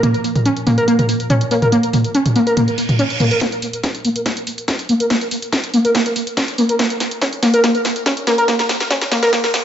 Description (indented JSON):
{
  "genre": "driving peak-time techno",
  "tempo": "142 BPM",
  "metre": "4/4",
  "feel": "straight",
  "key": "Bb minor",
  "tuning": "A4 = 441 Hz",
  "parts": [
    { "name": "overdriven synth lead", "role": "riff", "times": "0.0-9.4 s", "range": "Bb3 to Bb4", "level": "-16 LUFS", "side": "equal", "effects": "distortion, sidechain pumping, tape echo" },
    { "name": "deep dark ambient pad", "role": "drone", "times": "0.0-3.5 s", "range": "Bb2 to F3", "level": "-29 LUFS", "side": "equal", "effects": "none" },
    { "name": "techno drum kit", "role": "drums", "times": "0.0-9.6 s", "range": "hi-hat, snare drum, toms", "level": "-19 LUFS", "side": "equal", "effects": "high-pass filter on hats, low-pass filter on hats, high-pass filter on toms, low-pass filter on toms, high-pass filter on snare, low-pass filter on snare, high-pass filter on room, low-pass filter on room" },
    { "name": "reverse cymbal", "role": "sound effects", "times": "2.7-3.4 s", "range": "none", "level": "-23 LUFS", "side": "right 5 dB", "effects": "none" },
    { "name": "electronic kick drum", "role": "drums", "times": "3.4-9.4 s", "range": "none", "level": "-27 LUFS", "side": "left 1 dB", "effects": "high-pass filter on kick, high-pass filter on room" }
  ],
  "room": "wet plate reverb, RT60 1.4 s, digital ambience",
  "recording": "echo-heavy mix, high-pass filter, nothing above 7.8 kHz",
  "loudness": "-14 LUFS",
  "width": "side -9 dB against mid",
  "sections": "0.0-3.4 A section; 3.4-9.6 B section",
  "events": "reverse cymbal 2.7-3.4; build-up 3.4-9.6; drum fill 3.4-9.6; filter sweep on analog synth lead 3.4-9.6",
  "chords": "0.0 Bb5; 3.4 N.C.",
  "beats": "| 0.03 0.46 0.88 1.30 | 1.72 2.15 2.57 2.99 | 3.41 3.83 4.26 4.68 | 5.10 5.53 5.95 6.37 | 6.79 7.21 7.64 8.06 | 8.48 8.90 9.33"
}